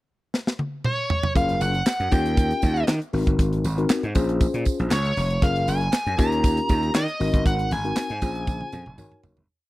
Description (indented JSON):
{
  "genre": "early-eighties boogie funk",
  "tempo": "118 BPM",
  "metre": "4/4",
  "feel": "straight",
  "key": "unclear",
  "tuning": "A4 = 441 Hz",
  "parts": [
    { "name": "tight funk drum kit", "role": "drums", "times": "0.3-9.5 s", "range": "handclaps, hi-hat, kick drum, snare drum, toms", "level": "-23 LUFS", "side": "equal", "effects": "none" },
    { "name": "nasal lead guitar with a parked wah", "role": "melody", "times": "0.9-9.2 s", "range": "Db5 to Bb5", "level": "-26 LUFS", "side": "equal", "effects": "overdrive, slapback echo" },
    { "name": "mellow tine electric piano", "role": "accompaniment", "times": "1.4-9.4 s", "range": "C4 to Db5", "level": "-27 LUFS", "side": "left 3 dB", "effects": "none" },
    { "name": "gritty slap bass", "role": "bass", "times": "1.4-9.5 s", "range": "F1 to Eb3", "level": "-24 LUFS", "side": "equal", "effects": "overdrive" },
    { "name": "tambourine", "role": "percussion", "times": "1.4-9.4 s", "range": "none", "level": "-41 LUFS", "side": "right 14 dB", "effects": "none" }
  ],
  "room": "small room ambience",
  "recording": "dry, close 1970s-style studio recording",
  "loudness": "-20 LUFS",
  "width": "side -18 dB against mid",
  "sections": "0.0-1.4 pickup bar; 1.4-9.5 verse",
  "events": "drum fill 0.3-1.4, 8.5-9.5; fade-out 7.5-9.5",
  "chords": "0.0 N.C.; 1.4 Gbmaj9; 2.1 Eb9; 3.1 Ab9; 4.2 Bbm7; 5.4 Gbmaj9; 6.2 Eb9; 7.2 Ab9; 8.2 Bbm7; 9.0 Ab9sus4",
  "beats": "0.34 0.85 | 1.35 1.86 2.37 2.88 | 3.39 3.90 4.41 4.91 | 5.42 5.93 6.44 6.95 | 7.46 7.96 8.47 8.98"
}